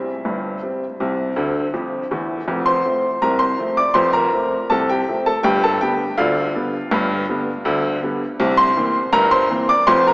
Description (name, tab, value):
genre	ragtime piano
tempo	81 BPM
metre	2/4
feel	straight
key	unclear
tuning	A4 = 440 Hz
part	clear upright piano	solo	0.0-10.1 s	F1 to D6	-16 LUFS	equal	none
room	wet church reverb, RT60 3.7 s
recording	recorded in a church or concert hall, small speaker sound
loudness	-16 LUFS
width	side -25 dB against mid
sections	0.0-10.1 A section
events	upright piano fill 1.4-2.5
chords	0.0 C; 2.5 F; 5.4 G7; 8.4 C7